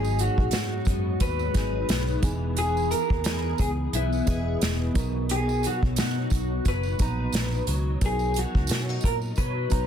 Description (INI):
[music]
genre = indie pop, bedroom pop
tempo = 88 BPM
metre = 4/4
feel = swing 55% on 16ths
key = B major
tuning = A4 = 440 Hz
[part]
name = electric guitar through a small old amp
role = melody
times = 0.0-9.9 s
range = E4 to B4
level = -30 LUFS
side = equal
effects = wide subtle chorus
[part]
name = mellow reed electric piano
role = accompaniment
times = 0.0-9.9 s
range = E3 to A#5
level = -34 LUFS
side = right 5 dB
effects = cassette tape
[part]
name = picked steel-string acoustic guitar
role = accompaniment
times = 0.0-9.9 s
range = G#2 to G#4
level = -32 LUFS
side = left 4 dB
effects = ensemble chorus, vibrato effect
[part]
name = vintage muted picked electric bass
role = bass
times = 0.0-9.9 s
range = E1 to B2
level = -28 LUFS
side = equal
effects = none
[part]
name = tambourine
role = percussion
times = 0.0-9.9 s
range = none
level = -42 LUFS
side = right 9 dB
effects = none
[part]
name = unplugged drum kit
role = drums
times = 0.2-9.9 s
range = hi-hat, kick drum, snare drum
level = -26 LUFS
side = equal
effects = none
[sound]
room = light reverb, small room ambience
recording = dense, heavily limited modern master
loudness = -23 LUFS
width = side -9 dB against mid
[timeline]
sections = 0.0-9.9 A section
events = none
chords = 0.0 G#m7; 2.2 Emaj7; 5.0 Bmaj7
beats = 0.53 1.21 1.89 | 2.57 3.25 3.93 4.61 | 5.29 5.97 6.66 7.34 | 8.02 8.70 9.38